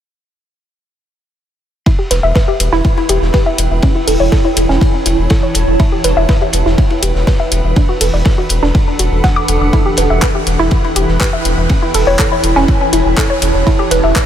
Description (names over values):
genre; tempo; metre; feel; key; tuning
melodic techno; 122 BPM; 4/4; straight; E dorian; A4 = 440 Hz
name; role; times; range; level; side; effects
woody wave-folded pluck; arpeggios; 1.9-14.2 s; C#4 to D6; -16 LUFS; left 1 dB; chorus, sidechain pumping, ping-pong delay
swarming drone; drone; 3.1-14.3 s; E2 to E3; -26 LUFS; equal; built-in reverb, sidechain pumping
crunchy breakbeat drum kit; drums; 1.9-14.3 s; hi-hat, ride cymbal, snare drum; -27 LUFS; equal; sidechain pumping on cymbals, high-pass filter on cymbals, sidechain pumping on hats, high-pass filter on hats, high-pass filter on snare, high-pass filter on room
electronic kick drum; drums; 1.9-14.3 s; none; -12 LUFS; equal; none
granular cloud pad; texture; 2.8-14.3 s; D4 to A5; -18 LUFS; right 2 dB; built-in reverb, sidechain pumping
round analog bass; bass; 2.1-14.1 s; E1; -15 LUFS; equal; sidechain pumping
deep house drum kit; drums; 2.1-14.3 s; handclaps, hi-hat; -18 LUFS; left 1 dB; sidechain pumping on hats
room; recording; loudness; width
moderate huge ambient reverb, RT60 5.0 s; dreamy mix soaked in reverb; -10 LUFS; side -10 dB against mid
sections
1.9-14.3 A section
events
none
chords
1.9 Em; 3.8 A/E; 7.8 D/E; 9.7 Em; 11.7 A/E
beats
| 1.86 2.35 2.85 3.34 | 3.83 4.32 4.81 5.31 | 5.80 6.29 6.78 7.27 | 7.76 8.26 8.75 9.24 | 9.73 10.22 10.72 11.21 | 11.70 12.19 12.68 13.18 | 13.67 14.16